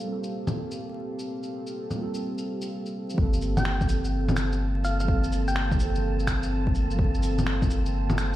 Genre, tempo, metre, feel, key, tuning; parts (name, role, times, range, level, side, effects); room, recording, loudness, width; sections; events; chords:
future garage; 126 BPM; 4/4; swing 66% on 16ths; G minor; A4 = 437 Hz
muted felt-like synth keys; accompaniment; 0.0-8.4 s; F3 to A4; -32 LUFS; right 1 dB; chorus, sidechain pumping, ping-pong delay
deep dark ambient pad; sustained chords; 0.0-8.4 s; Bb3 to F5; -35 LUFS; left 1 dB; chorus, built-in reverb, sidechain pumping
electronic shaker, bongos, cabasa and finger snaps; drums; 0.0-8.4 s; -30 LUFS; left 1 dB
warm sub bass; bass; 3.2-8.4 s; G1; -27 LUFS; equal; sidechain pumping
electronic kick drum; drums; 3.2-7.7 s; -26 LUFS; equal; overdrive
wind-like tuned noise texture; texture; 4.1-8.4 s; A5; -41 LUFS; right 4 dB; built-in reverb
thumb-piano-like synth pluck; melody; 3.6-6.1 s; F5 to G5; -34 LUFS; equal; chorus, tape echo
light reverb; played on a big sound system in a bare room, large studio reverb, vinyl crackle; -24 LUFS; side -14 dB against mid
0.0-3.2 A section; 3.2-8.4 B section
0.0 Gm11